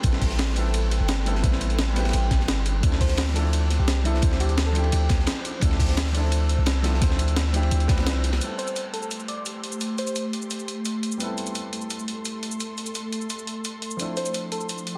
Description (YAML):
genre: liquid drum and bass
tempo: 172 BPM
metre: 4/4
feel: straight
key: A minor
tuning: A4 = 442 Hz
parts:
  - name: warm baby grand piano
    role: accompaniment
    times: 0.0-15.0 s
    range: F3 to C5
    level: -34 LUFS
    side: equal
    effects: low-pass filter, digital delay
  - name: ethereal airy pad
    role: sustained chords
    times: 0.0-15.0 s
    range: F3 to E6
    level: -37 LUFS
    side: equal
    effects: ensemble chorus, built-in reverb, sidechain pumping
  - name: long sustained 808-style bass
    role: bass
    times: 0.0-8.4 s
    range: G1 to D2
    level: -25 LUFS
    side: equal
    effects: none
  - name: breakbeat sampler-style drum kit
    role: drums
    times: 0.0-14.9 s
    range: cabasa, hi-hat, snare drum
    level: -33 LUFS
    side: equal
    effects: none
  - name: crunchy breakbeat drum kit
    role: drums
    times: 0.0-8.4 s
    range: hi-hat, ride cymbal, snare drum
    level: -36 LUFS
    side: equal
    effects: high-pass filter on cymbals, high-pass filter on hats, high-pass filter on snare, high-pass filter on room
  - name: electronic kick drum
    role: drums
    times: 0.0-8.0 s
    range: none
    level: -26 LUFS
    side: equal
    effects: none
  - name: soft struck synth lead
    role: melody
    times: 3.0-5.2, 8.6-10.2, 14.2-15.0 s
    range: E4 to D5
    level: -35 LUFS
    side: equal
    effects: chorus, digital delay
room: light reverb, small room ambience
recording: dense, heavily limited modern master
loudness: -25 LUFS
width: mono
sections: 0.0-8.4 A section; 8.4-15.0 B section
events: break 8.1-8.4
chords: 0.0 Am7; 2.8 Dm7; 8.4 Am7; 14.0 Dm7